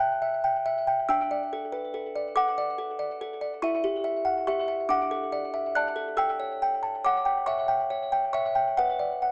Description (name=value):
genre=classical, lullaby for music box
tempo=47 BPM (dotted quarters)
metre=6/8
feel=rubato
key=D major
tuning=A4 = 441 Hz
part: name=music box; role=solo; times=0.0-9.3 s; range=D4 to F#6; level=-24 LUFS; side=equal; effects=slapback echo
room=light reverb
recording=small speaker sound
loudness=-24 LUFS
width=side -34 dB against mid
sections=0.0-9.3 A section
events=none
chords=0.0 A7(no3); 1.1 D; 3.6 C#dim/E; 4.9 D; 6.2 A7; 8.8 Bm